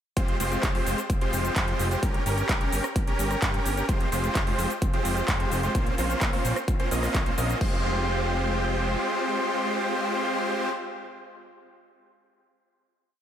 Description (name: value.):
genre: EDM, festival progressive house.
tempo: 129 BPM.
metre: 4/4.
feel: straight.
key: F minor.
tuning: A4 = 443 Hz.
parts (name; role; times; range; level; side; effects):
big supersaw lead; riff; 0.2-10.7 s; Ab3 to Eb5; -27 LUFS; equal; sidechain pumping, analog delay.
fat analog bass; bass; 0.2-9.0 s; F1 to G2; -30 LUFS; equal; sidechain pumping.
big-room dance drum kit; drums; 0.2-7.7 s; crash cymbal, handclaps, hi-hat, rim click, shaker; -32 LUFS; equal; studio reverb.
electronic kick drum; drums; 0.2-7.7 s; none; -27 LUFS; equal; studio reverb.
room: moderate plate reverb, RT60 2.7 s.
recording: dreamy mix soaked in reverb.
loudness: -23 LUFS.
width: side -9 dB against mid.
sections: 0.2-7.6 drop; 7.6-11.3 final chord.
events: drop 0.2-7.6.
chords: 0.2 Fmadd9; 2.0 Gdim; 3.9 Fmadd9; 5.7 Bbmadd9; 7.6 Fmadd9.